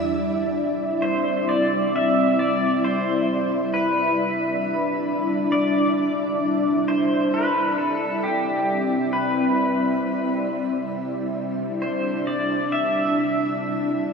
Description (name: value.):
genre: ambient.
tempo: 67 BPM.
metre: 4/4.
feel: straight.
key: C major.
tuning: A4 = 440 Hz.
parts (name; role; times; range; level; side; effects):
ethereal airy pad; sustained chords; 0.0-14.1 s; G3 to E5; -22 LUFS; equal; ensemble chorus, built-in reverb, shimmer reverb.
bowed-like drone; drone; 0.0-14.1 s; C3 to G3; -38 LUFS; right 1 dB; built-in reverb, phaser.
pedal steel guitar; melody; 1.0-14.1 s; G4 to E5; -25 LUFS; left 1 dB; analog chorus, shimmer reverb, tape echo.
room: wet lush hall reverb, RT60 2.7 s.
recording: dreamy mix soaked in reverb.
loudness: -20 LUFS.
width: side -5 dB against mid.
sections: 0.1-14.1 A section.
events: fade-in on synth drone 0.1-14.1.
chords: 0.1 C.